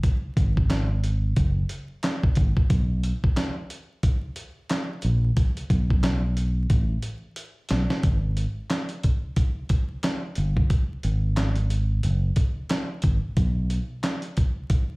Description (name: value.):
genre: hip hop, boom-bap hip-hop.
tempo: 90 BPM.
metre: 4/4.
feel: swing 59% on 16ths.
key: unclear.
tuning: A4 = 440 Hz.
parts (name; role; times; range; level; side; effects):
dusty soul sampler-style drum kit; drums; 0.0-14.9 s; handclaps, hi-hat, kick drum, snare drum; -23 LUFS; equal; none.
fingered electric bass; bass; 0.4-13.8 s; F#1 to B1; -23 LUFS; equal; none.
room: light reverb.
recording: played on a big sound system in a bare room, large studio reverb, vinyl crackle.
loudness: -22 LUFS.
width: side -26 dB against mid.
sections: 0.0-8.0 A section; 8.0-15.0 B section.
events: drum fill 6.7-8.0.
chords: none.